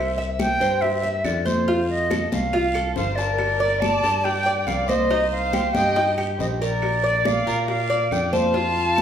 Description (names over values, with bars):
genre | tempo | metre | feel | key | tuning
latin, Cuban son and guajira | 140 BPM | 4/4 | straight | Bb major | A4 = 437 Hz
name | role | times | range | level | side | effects
bright silver concert flute | melody | 0.0-9.0 s | C5 to A5 | -23 LUFS | right 1 dB | none
Cuban tres | arpeggios | 0.0-9.0 s | Eb4 to A5 | -24 LUFS | equal | none
modern bright picked electric bass | bass | 0.0-9.0 s | G1 to Bb2 | -28 LUFS | equal | none
congas | percussion | 0.2-9.0 s | none | -29 LUFS | left 1 dB | none
bongos | percussion | 0.4-9.0 s | none | -33 LUFS | left 5 dB | none
claves | percussion | 0.4-9.0 s | none | -39 LUFS | right 1 dB | none
guiro | percussion | 0.4-9.0 s | none | -41 LUFS | left 6 dB | none
dark studio violin section | second line | 2.9-9.0 s | Bb4 to F5 | -28 LUFS | equal | none
room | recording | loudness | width
wet large studio reverb, RT60 1.2 s | band playing live in one room | -19 LUFS | side -8 dB against mid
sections
0.0-9.0 A section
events
none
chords
0.0 C; 1.7 F; 3.4 Gmadd9; 5.1 Cm; 6.8 Bb